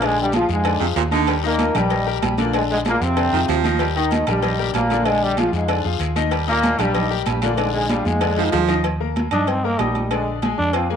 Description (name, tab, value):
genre	latin, salsa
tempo	190 BPM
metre	4/4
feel	straight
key	Eb major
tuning	A4 = 440 Hz
part	bright trombone section	melody	0.0-8.7 s	G2 to F4	-21 LUFS	equal	none
part	bright grand piano	accompaniment	0.0-11.0 s	D3 to Eb6	-24 LUFS	left 11 dB	none
part	hollow-body short-scale fingered electric bass	bass	0.0-11.0 s	Bb1 to G2	-24 LUFS	right 1 dB	none
part	agogo bells and timbales	percussion	0.0-10.9 s	none	-28 LUFS	right 12 dB	none
part	congas	percussion	0.0-11.0 s	none	-26 LUFS	right 1 dB	none
part	cowbell and bongos	percussion	0.0-10.9 s	none	-31 LUFS	left 14 dB	none
part	guiro	percussion	0.0-8.8 s	none	-33 LUFS	left 12 dB	none
part	clear baritone saxophone	second line	0.8-3.9, 8.4-8.8 s	Bb2 to F3	-22 LUFS	right 12 dB	none
part	growling trombone	melody	9.3-11.0 s	G3 to D4	-23 LUFS	right 1 dB	none
room	wet spring reverb, RT60 1.1 s, small room ambience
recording	1960s-style stereo with parts hard left and right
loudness	-17 LUFS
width	side -7 dB against mid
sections	0.0-8.8 A section; 8.8-11.0 B section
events	drum fill 8.1-8.8; trombone solo 8.8-11.0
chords	0.0 Bb7; 1.3 Ebmaj7; 2.5 Bb7; 3.8 Ebmaj7; 5.1 Bb7; 6.3 Ebmaj7; 7.6 Bb7; 8.8 Eb; 10.1 Bb7